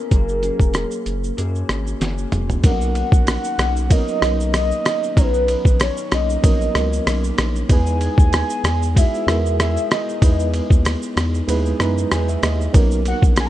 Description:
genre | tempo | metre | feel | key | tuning
indie pop, bedroom pop | 95 BPM | 4/4 | swing 55% on 16ths | B major | A4 = 439 Hz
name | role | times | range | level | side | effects
warbly nostalgic lead | melody | 0.0-13.5 s | A#4 to A#5 | -24 LUFS | equal | wide subtle chorus, tape echo
electric guitar through a small old amp | accompaniment | 0.0-13.5 s | B2 to G#4 | -30 LUFS | left 3 dB | wide subtle chorus, vibrato effect
reed electric piano | accompaniment | 0.0-13.5 s | F#3 to A#5 | -26 LUFS | right 4 dB | fast tremolo, cassette tape
round analog bass | bass | 0.1-13.5 s | E1 to F#2 | -21 LUFS | equal | none
lo-fi sampler-style drum kit | drums | 0.1-13.5 s | hi-hat, kick drum, ride cymbal, rim click, shaker, snare drum, toms | -17 LUFS | equal | overdrive, vintage 12-bit sampler grit
room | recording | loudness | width
little or no reverb | rough home demo mix | -16 LUFS | side -14 dB against mid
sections
0.0-2.6 A section; 2.6-13.5 B section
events
drum fill 2.0-2.6; reed electric piano fill 11.5-12.7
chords
0.1 F#add9; 2.6 Bmaj9; 7.7 Emaj7; 12.7 Bmaj9

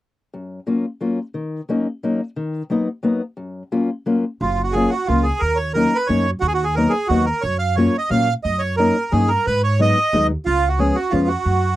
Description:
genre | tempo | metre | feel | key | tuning
musette waltz | 178 BPM | 3/4 | straight | F# major | A4 = 440 Hz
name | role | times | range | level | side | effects
fingerpicked old ladder-braced acoustic guitar | accompaniment | 0.3-11.3 s | F#2 to E#4 | -19 LUFS | left 2 dB | none
bandoneon | melody | 4.4-11.8 s | E#4 to E#5 | -19 LUFS | right 3 dB | none
upright bass | bass | 4.4-11.8 s | F#1 to A#2 | -21 LUFS | equal | none
room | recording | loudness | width
light reverb | dry, close 1970s-style studio recording | -17 LUFS | side -15 dB against mid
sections
0.3-4.4 A section; 4.4-11.8 B section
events
none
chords
0.3 F#maj7; 1.4 D#m7; 2.4 Bmaj7/D#; 3.4 F#maj7; 5.4 D#m7; 6.4 Bmaj7/D#; 7.4 F#maj7; 8.4 D#m7/F#; 9.5 G#m7; 10.5 C#7

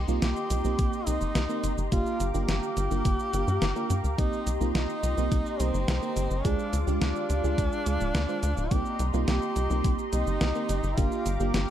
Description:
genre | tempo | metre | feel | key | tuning
synthwave | 106 BPM | 4/4 | straight | C minor | A4 = 437 Hz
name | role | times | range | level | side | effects
warm analog pad | sustained chords | 0.0-11.7 s | F4 to D6 | -35 LUFS | left 1 dB | chorus, sidechain pumping
FM electric piano with soft pad layer | stabs | 0.0-11.7 s | Ab3 to C5 | -33 LUFS | right 4 dB | chorus
tight sequencer bass | bass | 0.0-11.7 s | D1 to G2 | -28 LUFS | equal | none
clean 12-bit digital drum machine | drums | 0.1-11.7 s | cabasa, hi-hat, snare drum | -33 LUFS | equal | small room ambience
warm tenor saxophone | melody | 0.2-11.7 s | C4 to G4 | -33 LUFS | equal | tape echo
electronic kick drum | drums | 0.8-11.1 s | none | -28 LUFS | equal | small room ambience
room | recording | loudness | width
light reverb | dark, warm production | -25 LUFS | side -11 dB against mid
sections
0.0-11.7 A section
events
none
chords
0.0 Cm7; 1.9 Gm7; 4.2 Cm7; 6.5 Ddim; 8.7 Cm7; 11.0 Gm7

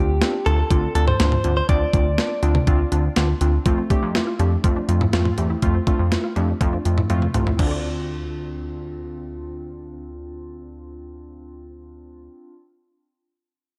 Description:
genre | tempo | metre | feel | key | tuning
synth-pop | 122 BPM | 4/4 | straight | D minor | A4 = 440 Hz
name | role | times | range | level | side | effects
direct-recorded clean electric guitar | melody | 0.0-3.1 s | G4 to D5 | -27 LUFS | equal | spring reverb, slapback echo
warm analog keys | accompaniment | 0.0-12.6 s | A3 to G4 | -29 LUFS | equal | chorus
chorused synth bass | bass | 0.0-12.3 s | C2 to F2 | -25 LUFS | equal | none
clean 12-bit digital drum machine | drums | 0.2-7.7 s | crash cymbal, hi-hat, kick drum, snare drum, toms | -24 LUFS | equal | overdrive
resonant blip pluck | arpeggios | 3.8-12.7 s | C4 to D5 | -34 LUFS | equal | chorus, slapback echo
room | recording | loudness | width
light reverb | dark, warm production | -20 LUFS | mono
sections
0.0-3.7 A section; 3.7-7.6 B section; 7.6-11.5 C section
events
drum fill 7.1-7.6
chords
0.0 Dm7; 3.7 F; 7.6 Dm7

